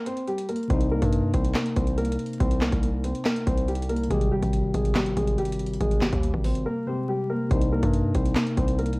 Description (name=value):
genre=hip hop, trap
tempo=141 BPM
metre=4/4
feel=half-time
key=C minor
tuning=A4 = 436 Hz
part: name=dark concert grand piano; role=melody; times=0.0-9.0 s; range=G3 to C5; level=-28 LUFS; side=equal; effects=cassette tape
part: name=booming analog drum machine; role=drums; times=0.1-9.0 s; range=handclaps, hi-hat, kick drum, snare drum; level=-26 LUFS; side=equal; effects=cassette tape
part: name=tine electric piano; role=accompaniment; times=0.7-9.0 s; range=C3 to G4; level=-30 LUFS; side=left 2 dB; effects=medium stereo tremolo, cassette tape
part: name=distorted 808-style bass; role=bass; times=0.7-9.0 s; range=Ab1 to G2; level=-27 LUFS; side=equal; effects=distortion
room=light reverb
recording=home recording on cassette, vinyl crackle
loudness=-22 LUFS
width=side -24 dB against mid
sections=0.0-9.0 A section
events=break 0.0-0.7, 6.7-7.5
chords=0.0 Abmaj7 (rootless); 0.7 Cm7; 4.1 Abmaj7; 7.5 Cm7